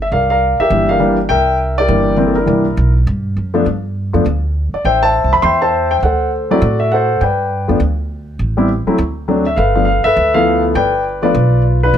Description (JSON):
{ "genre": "jazz", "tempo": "203 BPM", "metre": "4/4", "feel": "swing 62% on 8ths", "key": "G mixolydian", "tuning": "A4 = 440 Hz", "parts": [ { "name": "warm concert grand piano", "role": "melody", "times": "0.0-12.0 s", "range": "E3 to C6", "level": "-13 LUFS", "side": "left 1 dB", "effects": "plate reverb" }, { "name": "upright bass", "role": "bass", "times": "0.0-12.0 s", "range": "G1 to A2", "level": "-17 LUFS", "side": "right 1 dB", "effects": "none" } ], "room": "light reverb", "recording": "close, detailed microphones", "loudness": "-12 LUFS", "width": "side -9 dB against mid", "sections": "0.0-9.6 A section; 9.6-12.0 A section", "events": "none", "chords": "0.1 C9; 3.7 G5; 4.8 Am7; 6.0 D7; 7.2 G; 8.4 Am; 9.0 D7; 9.6 G9" }